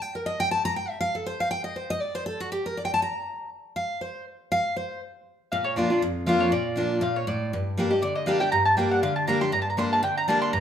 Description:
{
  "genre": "bluegrass",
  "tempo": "240 BPM",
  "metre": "4/4",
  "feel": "swing 55% on 8ths",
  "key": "unclear",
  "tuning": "A4 = 439 Hz",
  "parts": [
    { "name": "picked steel-string acoustic guitar", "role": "accompaniment", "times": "0.0-10.6 s", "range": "F2 to Bb5", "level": "-25 LUFS", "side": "equal", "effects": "none" },
    { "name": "mandolin", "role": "melody", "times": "5.5-10.6 s", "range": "C#5 to C6", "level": "-25 LUFS", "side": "equal", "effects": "none" }
  ],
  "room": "moderate large studio reverb, RT60 1.1 s",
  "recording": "minimal, uncompressed stereo recording",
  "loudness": "-23 LUFS",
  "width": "side -9 dB against mid",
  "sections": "0.0-5.5 A section; 5.5-10.6 A section",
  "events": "steel-string acoustic guitar solo 0.0-5.5; mandolin solo 5.5-10.6",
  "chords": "0.0 N.C.; 5.5 Bb; 7.5 Gm"
}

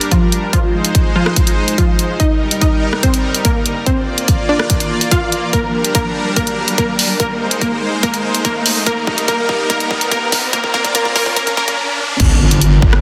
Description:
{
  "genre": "heavy wobble dubstep",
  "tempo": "144 BPM",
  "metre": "4/4",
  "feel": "half-time",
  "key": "G phrygian",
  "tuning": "A4 = 441 Hz",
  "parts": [
    { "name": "unison pluck", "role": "melody", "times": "0.0-11.8 s", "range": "F3 to F5", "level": "-20 LUFS", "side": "equal", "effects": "dub echo" },
    { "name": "supersaw pad", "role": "sustained chords", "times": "0.0-13.0 s", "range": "G3 to D5", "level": "-23 LUFS", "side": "equal", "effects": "vintage 12-bit sampler grit, sidechain pumping" },
    { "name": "dubstep drum kit", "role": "drums", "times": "0.0-13.0 s", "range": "crash cymbal, hi-hat, rim click", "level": "-20 LUFS", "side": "equal", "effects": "overdrive" },
    { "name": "riser and impact", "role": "sound effects", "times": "2.2-13.0 s", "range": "none", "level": "-24 LUFS", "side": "equal", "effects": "none" },
    { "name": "electronic kick drum", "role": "drums", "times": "0.1-12.9 s", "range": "none", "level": "-19 LUFS", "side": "equal", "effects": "overdrive" },
    { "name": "wobble bass", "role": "bass", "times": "12.2-13.0 s", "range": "G1", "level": "-15 LUFS", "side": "equal", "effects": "chorus, overdrive" }
  ],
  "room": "moderate lush hall reverb, RT60 1.9 s",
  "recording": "dense, heavily limited modern master, high-pass filter",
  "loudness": "-15 LUFS",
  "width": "mono",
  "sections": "0.0-12.2 A section",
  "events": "build-up 0.0-12.2; filter sweep 0.0-12.2; riser 2.2-12.2; drum fill 5.5-11.8; impact 12.2-13.0",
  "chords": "0.0 Gm; 0.5 Ab; 2.2 Eb/G; 3.9 Bb; 5.5 Gm; 7.2 Ab; 8.9 Eb/G; 10.5 Bb; 12.2 Gm"
}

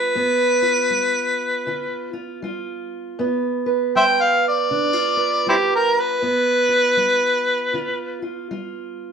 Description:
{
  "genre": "acoustic country blues, solo or duo",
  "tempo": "79 BPM",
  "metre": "4/4",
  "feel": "swing 60% on 8ths",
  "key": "G mixolydian",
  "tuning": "A4 = 440 Hz",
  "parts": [
    { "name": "mellow harmonica", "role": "melody", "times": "0.0-8.2 s", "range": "C4 to G5", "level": "-17 LUFS", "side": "left 1 dB", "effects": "none" },
    { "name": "fingerpicked steel-string acoustic guitar", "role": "accompaniment", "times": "0.0-9.1 s", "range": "G2 to B4", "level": "-24 LUFS", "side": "right 4 dB", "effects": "none" }
  ],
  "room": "moderate stone room reverb, RT60 1.1 s",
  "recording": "band playing live in one room",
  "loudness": "-17 LUFS",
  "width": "side -6 dB against mid",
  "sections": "0.0-9.1 A section",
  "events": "harmonica solo 0.0-9.1",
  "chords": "0.0 G7"
}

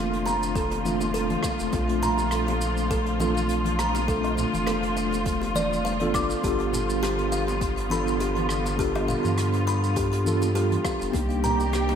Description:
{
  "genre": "sunset chillout",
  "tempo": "102 BPM",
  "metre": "4/4",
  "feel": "swing 55% on 16ths",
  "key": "Bb major",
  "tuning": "A4 = 441 Hz",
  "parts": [
    { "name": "mellow tine electric piano", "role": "accompaniment", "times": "0.0-12.0 s", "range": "A3 to A4", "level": "-28 LUFS", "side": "moving between left 5 dB and right 4 dB", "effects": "medium stereo tremolo, auto-pan, digital delay" },
    { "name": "muted studio string section", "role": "sustained chords", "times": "0.0-12.0 s", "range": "Bb2 to G4", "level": "-29 LUFS", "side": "left 1 dB", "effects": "none" },
    { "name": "warm sub bass", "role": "bass", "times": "0.0-12.0 s", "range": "F1 to G2", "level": "-29 LUFS", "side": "equal", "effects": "none" },
    { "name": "vintage brush drum kit", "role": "drums", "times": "0.1-12.0 s", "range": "hi-hat, rim click, shaker, woodblock", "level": "-36 LUFS", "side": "right 1 dB", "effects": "none" },
    { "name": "kalimba", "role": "arpeggios", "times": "0.3-12.0 s", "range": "G4 to D6", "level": "-30 LUFS", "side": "equal", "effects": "digital delay" },
    { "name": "bongos and congas", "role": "percussion", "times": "0.3-12.0 s", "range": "none", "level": "-36 LUFS", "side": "left 2 dB", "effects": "none" },
    { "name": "electronic kick drum", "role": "drums", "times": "0.6-11.3 s", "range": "none", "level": "-31 LUFS", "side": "equal", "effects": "none" }
  ],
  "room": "moderate lush hall reverb, RT60 1.7 s",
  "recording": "bright 1980s-style digital production",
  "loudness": "-22 LUFS",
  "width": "side -8 dB against mid",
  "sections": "0.0-12.0 A section",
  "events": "none",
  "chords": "0.0 Bbmaj7; 6.1 G7; 11.1 Cm7"
}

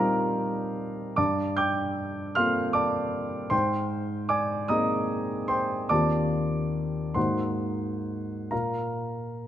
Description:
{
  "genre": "classical, impressionist solo piano",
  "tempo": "43-53 BPM (dotted quarters)",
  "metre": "6/8",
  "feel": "rubato",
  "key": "unclear",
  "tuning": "A4 = 440 Hz",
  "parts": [
    { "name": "warm concert grand piano", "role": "solo", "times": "0.0-9.5 s", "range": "Eb2 to G6", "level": "-25 LUFS", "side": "equal", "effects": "none" }
  ],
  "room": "moderate concert hall reverb, RT60 1.8 s",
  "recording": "close, detailed microphones",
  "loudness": "-25 LUFS",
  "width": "side -11 dB against mid",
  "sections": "0.0-9.5 A section",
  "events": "none",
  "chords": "0.0 Eb69/Bb; 1.2 Gm11; 3.5 Abadd9; 5.9 Eb69; 7.2 Ab9; 8.5 Bb5"
}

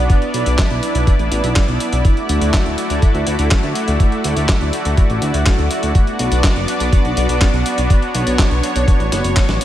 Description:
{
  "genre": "italo disco",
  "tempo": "123 BPM",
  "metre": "4/4",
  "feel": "straight",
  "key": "unclear",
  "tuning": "A4 = 439 Hz",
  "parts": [
    { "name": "lush unison pad", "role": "sustained chords", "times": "0.0-9.6 s", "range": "A3 to D5", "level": "-19 LUFS", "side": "equal", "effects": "chorus" },
    { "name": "chorused synth bass", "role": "bass", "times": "0.0-9.6 s", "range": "D1 to D2", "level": "-19 LUFS", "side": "equal", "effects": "tube saturation" },
    { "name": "dusty soul sampler-style drum kit", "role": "drums", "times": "0.1-9.6 s", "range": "handclaps, hi-hat, snare drum", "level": "-22 LUFS", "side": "equal", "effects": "none" },
    { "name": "electronic kick drum", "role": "drums", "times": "0.1-9.5 s", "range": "none", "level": "-13 LUFS", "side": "equal", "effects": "none" }
  ],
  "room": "light reverb, digital ambience",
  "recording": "none",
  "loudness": "-13 LUFS",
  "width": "side -12 dB against mid",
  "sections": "0.0-9.6 A section",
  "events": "drum fill 9.1-9.6",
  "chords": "0.0 Bm; 2.0 Dadd9; 6.0 Bm"
}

